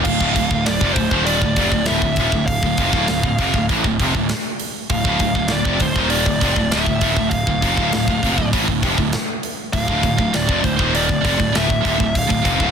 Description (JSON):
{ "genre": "heavy metal", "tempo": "99 BPM", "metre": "4/4", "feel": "straight", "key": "D minor", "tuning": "A4 = 440 Hz", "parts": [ { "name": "high-gain lead guitar", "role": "melody", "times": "0.0-12.7 s", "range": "C5 to F5", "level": "-23 LUFS", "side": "left 1 dB", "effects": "distortion" }, { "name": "scooped high-gain guitar", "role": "riff", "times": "0.0-12.7 s", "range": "D2 to E3", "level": "-21 LUFS", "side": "right 12 dB", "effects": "distortion" }, { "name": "tight distorted guitar", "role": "riff", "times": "0.0-12.7 s", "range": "D2 to E3", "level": "-23 LUFS", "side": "left 13 dB", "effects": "distortion" }, { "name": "fuzz picked electric bass", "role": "bass", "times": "0.0-12.7 s", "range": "D1 to A1", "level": "-24 LUFS", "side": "equal", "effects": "overdrive" }, { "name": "tight metal drum kit", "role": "drums", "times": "0.0-12.7 s", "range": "crash cymbal, hi-hat, kick drum, snare drum", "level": "-21 LUFS", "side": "equal", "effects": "none" } ], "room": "small room ambience", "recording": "dense, heavily limited modern master", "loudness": "-16 LUFS", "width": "side -7 dB against mid", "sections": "0.1-12.7 A section", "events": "none", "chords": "0.1 Dm" }